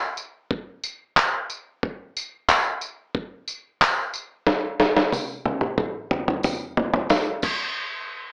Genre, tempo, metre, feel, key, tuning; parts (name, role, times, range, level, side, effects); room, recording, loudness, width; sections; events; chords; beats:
pop; 91 BPM; 4/4; straight
dusty soul sampler-style drum kit; drums; 0.2-7.6 s; crash cymbal, handclaps, kick drum, snare drum, tambourine, toms; -24 LUFS; equal
tambourine; percussion; 1.2-7.6 s; -38 LUFS; equal
light reverb; AM radio sound; -25 LUFS; mono
0.0-7.1 A section; 7.1-8.3 B section
drum fill 4.5-7.1
0.51 1.17 | 1.83 2.49 3.15 3.81 | 4.47 5.13 5.79 6.45 | 7.10